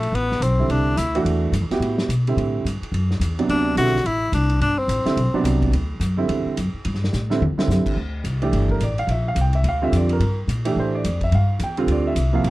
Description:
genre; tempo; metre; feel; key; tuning
modal jazz; 214 BPM; 4/4; swing 61% on 8ths; G dorian from 8.0 s; A4 = 440 Hz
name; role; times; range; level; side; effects
bright tenor saxophone; melody; 0.0-1.2, 3.5-5.6 s; A3 to F#4; -22 LUFS; left 2 dB; none
upright bass; bass; 0.0-12.5 s; G1 to B2; -21 LUFS; equal; none
vintage drum kit; drums; 0.0-12.5 s; crash cymbal, hi-hat, kick drum, ride cymbal, snare drum, toms; -31 LUFS; equal; none
warm concert grand piano; accompaniment; 0.6-12.5 s; C3 to G5; -22 LUFS; right 3 dB; none
room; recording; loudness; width
little or no reverb; none; -18 LUFS; side -18 dB against mid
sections
0.0-8.0 A section; 8.0-12.5 B section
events
drum fill 7.1-7.7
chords
0.0 A9sus4; 3.5 D9sus4; 8.0 Gm11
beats
| 0.14 0.41 0.69 0.97 | 1.25 1.53 1.81 2.09 | 2.37 2.65 2.93 3.21 | 3.49 3.77 4.05 4.33 | 4.61 4.89 5.17 5.45 | 5.73 6.01 6.29 6.57 | 6.84 7.12 7.40 7.68 | 7.96 8.24 8.52 8.80 | 9.08 9.36 9.64 9.92 | 10.20 10.48 10.76 11.04 | 11.32 11.60 11.88 12.16 | 12.44

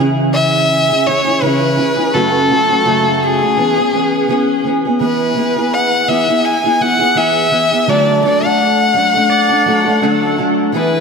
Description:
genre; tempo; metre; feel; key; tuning
acoustic pop; 84 BPM; 4/4; swing 55% on 16ths; unclear; A4 = 436 Hz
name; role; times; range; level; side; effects
fingerpicked acoustic archtop guitar; accompaniment; 0.0-11.0 s; F#2 to A4; -15 LUFS; right 1 dB; double-tracked left and right
warm violin; melody; 0.3-11.0 s; G#4 to G#5; -14 LUFS; left 2 dB; none
pedal steel guitar; second line; 9.3-10.5 s; A4 to D5; -19 LUFS; right 2 dB; analog delay
room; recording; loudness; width
wet lush hall reverb, RT60 2.7 s; dreamy mix soaked in reverb; -11 LUFS; side -5 dB against mid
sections
0.0-5.0 A section; 5.0-11.0 B section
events
none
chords
0.0 C#m; 2.1 F#m; 3.6 E6; 5.0 E; 7.9 D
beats
0.70 1.42 | 2.13 2.85 3.57 4.29 | 5.01 5.73 6.44 7.16 | 7.88 8.60 9.31 10.03 | 10.74

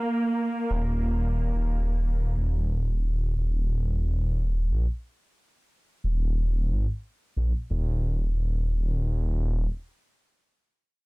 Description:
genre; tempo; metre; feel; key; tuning
trip hop; 90 BPM; 4/4; swing 54% on 16ths; unclear; A4 = 440 Hz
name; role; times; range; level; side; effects
dark studio string section; sustained chords; 0.0-2.4 s; Bb3; -29 LUFS; right 1 dB; low-pass filter
dark detuned saw bass; bass; 0.7-9.7 s; Eb1 to Bb1; -24 LUFS; equal; none
room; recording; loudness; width
small room ambience; dense, heavily limited modern master; -25 LUFS; side -26 dB against mid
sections
0.0-7.7 A section; 7.7-10.4 B section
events
none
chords
0.0 Eb5; 2.4 N.C.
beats
0.36 1.03 1.70 | 2.37 3.03 3.70 4.37 | 5.03 5.70 6.37 7.03 | 7.70 8.37 9.03

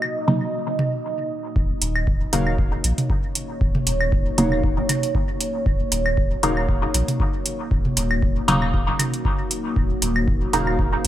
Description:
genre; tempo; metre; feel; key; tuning
dub techno; 117 BPM; 4/4; swing 55% on 16ths; Eb dorian; A4 = 440 Hz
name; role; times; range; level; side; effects
deep dark ambient pad; sustained chords; 0.0-11.1 s; Bb3 to Eb5; -27 LUFS; right 1 dB; chorus, built-in reverb, sidechain pumping
electronic claves and toms; percussion; 0.0-10.8 s; none; -27 LUFS; right 1 dB; overdrive, sidechain pumping on perc, sidechain pumping on toms, dub echo
filtered dub chord stab; stabs; 0.3-10.7 s; Db3 to Eb4; -24 LUFS; equal; phaser, cassette tape, sidechain pumping, dub echo
soft dub sub bass; bass; 1.6-11.1 s; Eb1 to Bb1; -25 LUFS; equal; sidechain pumping
electronic kick drum; drums; 1.6-10.9 s; none; -22 LUFS; equal; none
electronic hi-hat; drums; 1.8-11.1 s; none; -23 LUFS; right 2 dB; none
warbly lo-fi synth keys; riff; 2.3-10.8 s; Gb4 to F5; -33 LUFS; equal; chorus, sidechain pumping, dub echo
room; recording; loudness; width
light reverb; bright 1980s-style digital production; -19 LUFS; side -12 dB against mid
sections
0.0-1.6 A section; 1.6-11.1 B section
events
none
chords
0.0 Ebm; 1.6 Ebm7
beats
0.02 0.53 1.05 | 1.56 2.07 2.58 3.10 | 3.61 4.12 4.64 5.15 | 5.66 6.17 6.69 7.20 | 7.71 8.22 8.74 9.25 | 9.76 10.28 10.79

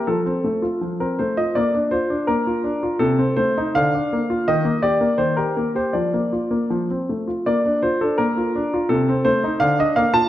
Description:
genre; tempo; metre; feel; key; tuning
classical-period piano sonatina; 78-86 BPM; 2/4; rubato; Bb major; A4 = 442 Hz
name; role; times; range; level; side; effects
clear grand piano; solo; 0.0-10.3 s; C3 to A5; -18 LUFS; equal; none
room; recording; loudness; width
wet recital hall reverb, RT60 1.6 s; dark, warm production; -18 LUFS; side -13 dB against mid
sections
0.0-7.5 A section; 7.5-10.3 A section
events
none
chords
0.1 F; 1.6 Bb; 3.0 Cm6; 3.7 Bb/D; 4.5 Eb; 5.9 Bb/F; 6.7 F; 7.5 Bb; 8.9 Cm6; 9.6 Bb/D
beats
| 0.07 0.82 | 1.56 2.28 | 3.00 3.74 | 4.45 5.18 | 5.94 6.70 | 7.47 8.20 | 8.91 9.62

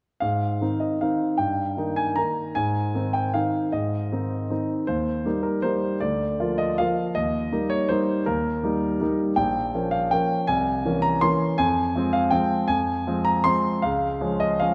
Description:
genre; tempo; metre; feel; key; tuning
classical, piano waltz; 147-169 BPM; 3/4; rubato; Ab major, F minor from 9.4 s; A4 = 440 Hz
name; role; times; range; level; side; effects
warm grand piano; solo; 0.2-14.7 s; Bb1 to C6; -24 LUFS; equal; none
room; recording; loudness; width
wet concert hall reverb, RT60 2.4 s; none; -24 LUFS; mono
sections
0.2-14.7 A section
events
none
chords
0.2 Ab; 1.4 Eb/G; 2.6 Ab; 4.9 Eb; 6.0 Bb/D; 7.2 Eb; 9.4 Gm7b5/Bb; 10.5 C7b9; 11.6 Fm; 13.8 Db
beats
| 0.22 0.61 1.01 | 1.39 1.77 2.17 | 2.56 2.95 3.35 | 3.74 4.12 4.50 | 4.88 5.25 5.63 | 6.01 6.40 6.79 | 7.16 7.52 7.89 | 8.27 8.63 9.01 | 9.37 9.73 10.11 | 10.48 10.84 11.22 | 11.59 11.95 12.32 | 12.70 13.08 13.47 | 13.84 14.23 14.62

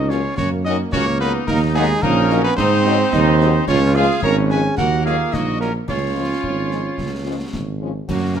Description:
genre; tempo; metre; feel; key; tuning
military-style march for wind band; 109 BPM; 2/4; straight; unclear; A4 = 440 Hz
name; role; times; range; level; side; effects
mellow cornet; melody; 0.0-8.4 s; F#4 to A#5; -24 LUFS; equal; none
warm euphonium; second line; 0.0-8.4 s; F#3 to A#4; -24 LUFS; right 4 dB; none
warm trombone section; sustained chords; 0.0-8.4 s; A#3 to E#4; -25 LUFS; right 2 dB; none
mellow tuba; bass; 0.0-8.4 s; G#1 to G#2; -20 LUFS; right 2 dB; none
clear woodwind section; second line; 0.1-8.4 s; A#3 to C#5; -26 LUFS; left 4 dB; none
mellow French horn section; accompaniment; 0.1-8.4 s; D#3 to D#4; -26 LUFS; left 8 dB; none
concert snare drum, concert bass drum and clash cymbals; drums; 0.1-8.4 s; none; -28 LUFS; left 2 dB; none
room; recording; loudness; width
moderate large studio reverb, RT60 1.1 s; close, detailed microphones; -16 LUFS; side -8 dB against mid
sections
0.0-8.4 A section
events
none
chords
0.0 F#; 1.5 D#m; 2.6 G#7; 3.7 C#; 4.8 D#m; 5.9 C#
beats
| 0.38 0.93 | 1.48 2.03 | 2.58 3.13 | 3.68 4.23 | 4.78 5.33 | 5.89 6.44 | 6.99 7.54 | 8.09

